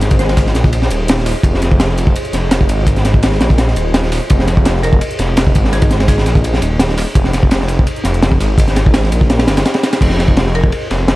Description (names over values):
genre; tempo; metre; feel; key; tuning
drum and bass, jungle; 168 BPM; 4/4; straight; F minor; A4 = 438 Hz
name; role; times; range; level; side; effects
detuned saw bass; bass; 0.0-11.2 s; Eb1 to Bb1; -15 LUFS; equal; none
breakbeat sampler-style drum kit; drums; 0.0-10.0 s; hi-hat, snare drum; -29 LUFS; right 2 dB; high-pass filter on hats, high-pass filter on snare
crunchy breakbeat drum kit; drums; 0.0-11.2 s; crash cymbal, kick drum, ride cymbal, snare drum; -13 LUFS; equal; none
marimba with hard mallets; melody; 0.2-0.5, 4.8-6.6, 10.6-10.8 s; Ab4 to C5; -25 LUFS; left 1 dB; dub echo
room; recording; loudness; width
small room ambience; dark, warm production, vinyl crackle; -11 LUFS; side -18 dB against mid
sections
0.0-10.0 A section; 10.0-11.2 A section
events
drop 0.0-10.0, 10.0-11.2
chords
0.0 Fm7; 4.3 Ab; 10.0 Fm7